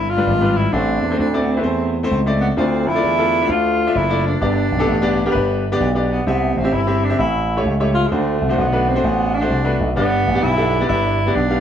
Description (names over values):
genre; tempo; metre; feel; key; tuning
uptempo gospel; 130 BPM; 4/4; swing 65% on 8ths; unclear; A4 = 440 Hz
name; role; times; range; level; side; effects
breathy tenor saxophone; melody; 0.0-11.6 s; Ab3 to F4; -20 LUFS; right 1 dB; none
bright grand piano; accompaniment; 0.0-11.6 s; G2 to F5; -20 LUFS; left 2 dB; none
slap bass with an envelope filter; bass; 0.0-11.6 s; F#1 to F2; -20 LUFS; right 1 dB; none
room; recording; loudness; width
moderate large studio reverb, RT60 1.1 s; band playing live in one room; -15 LUFS; side -9 dB against mid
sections
0.0-11.6 A section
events
none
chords
0.0 G7; 0.7 Am; 2.6 Dm; 4.4 G; 6.3 C; 7.2 A7; 8.1 D7; 10.0 G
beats
0.26 | 0.72 1.19 1.65 2.11 | 2.57 3.03 3.50 3.96 | 4.42 4.88 5.34 5.81 | 6.27 6.73 7.19 7.65 | 8.12 8.58 9.04 9.50 | 9.96 10.43 10.89 11.35